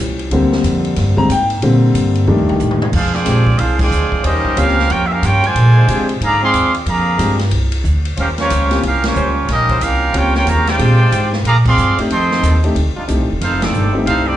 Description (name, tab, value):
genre	jazz, big band swing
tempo	183 BPM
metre	4/4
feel	swing 63% on 8ths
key	Bb major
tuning	A4 = 441 Hz
part	warm baby grand piano	accompaniment	0.0-14.4 s	D3 to Bb5	-18 LUFS	left 2 dB	slapback echo
part	upright bass	bass	0.0-14.4 s	F1 to C3	-15 LUFS	equal	none
part	swinging big-band drum kit	drums	0.2-14.2 s	crash cymbal, hi-hat, kick drum, ride cymbal, snare drum, toms	-23 LUFS	equal	none
part	clear trumpet section	melody	2.9-14.4 s	Bb3 to C6	-16 LUFS	right 2 dB	slapback echo
part	clear trombone section	second line	2.9-14.4 s	Db3 to G4	-24 LUFS	right 3 dB	none
part	warm trombone section	sustained chords	3.3-14.4 s	Eb3 to C5	-28 LUFS	left 2 dB	none
room	small room ambience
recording	live gig heard through the venue's PA, club reverb, nothing above 10.5 kHz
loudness	-12 LUFS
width	side -12 dB against mid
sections	0.0-2.9 A section; 2.9-14.4 B section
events	grand piano solo 0.0-2.9; drum fill 2.3-2.9; band accent 3.8, 9.0, 11.6, 13.6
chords	0.3 Bb13; 2.3 F13; 2.9 Bb13; 4.2 Eb13; 5.6 Bb13; 8.2 Eb13; 10.8 Bb13; 12.1 F13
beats	| 0.31 0.64 0.97 1.30 | 1.62 1.95 2.28 2.60 | 2.93 3.26 3.59 3.92 | 4.24 4.57 4.90 5.22 | 5.55 5.88 6.21 6.54 | 6.86 7.19 7.52 7.85 | 8.18 8.50 8.83 9.16 | 9.49 9.81 10.14 10.47 | 10.80 11.12 11.45 11.78 | 12.11 12.43 12.76 13.09 | 13.41 13.74 14.07